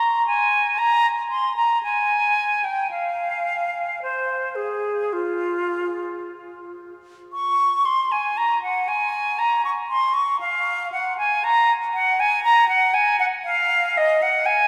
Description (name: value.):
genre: classical, baroque-style fantasia for unaccompanied flute.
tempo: 53-60 BPM.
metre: 4/4.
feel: rubato.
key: F minor.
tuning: A4 = 440 Hz.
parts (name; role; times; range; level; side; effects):
silver concert flute; solo; 0.0-14.7 s; F4 to Db6; -21 LUFS; equal; none.
room: wet cathedral reverb, RT60 5.0 s.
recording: recorded in a church or concert hall.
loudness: -21 LUFS.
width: mono.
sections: 0.0-7.3 A section; 7.3-14.7 A section.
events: none.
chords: none.